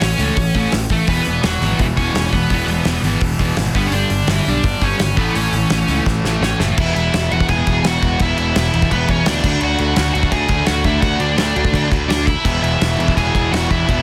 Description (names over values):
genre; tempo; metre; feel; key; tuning
punk rock; 169 BPM; 4/4; straight; E mixolydian; A4 = 440 Hz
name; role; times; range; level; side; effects
smooth overdriven lead guitar; melody; 0.0-14.0 s; E3 to G#5; -23 LUFS; equal; none
crunchy overdriven guitar; riff; 0.0-14.0 s; G2 to F#4; -26 LUFS; equal; none
sludgy distorted guitar; riff; 0.0-14.0 s; E2 to D4; -25 LUFS; equal; overdrive
picked electric bass; bass; 0.0-14.0 s; E1 to D2; -23 LUFS; equal; none
loose indie drum kit; drums; 0.0-14.0 s; crash cymbal, hi-hat, kick drum, snare drum; -22 LUFS; equal; none
tight distorted guitar; riff; 1.1-6.6, 12.4-14.0 s; E2 to A3; -28 LUFS; equal; distortion
room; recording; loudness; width
little or no reverb; dense, heavily limited modern master; -17 LUFS; mono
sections
0.0-6.8 A section; 6.8-14.0 B section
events
drum fill 6.1-6.8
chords
0.0 A; 1.1 E; 3.8 G5; 5.2 A; 6.8 E; 9.4 D; 12.5 E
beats
0.01 0.37 0.72 | 1.08 1.44 1.79 2.15 | 2.51 2.86 3.22 3.58 | 3.93 4.29 4.64 5.00 | 5.36 5.71 6.07 6.42 | 6.78 7.13 7.49 7.84 | 8.20 8.55 8.91 9.27 | 9.62 9.97 10.33 10.68 | 11.04 11.39 11.75 12.10 | 12.46 12.81 13.17 13.52 | 13.88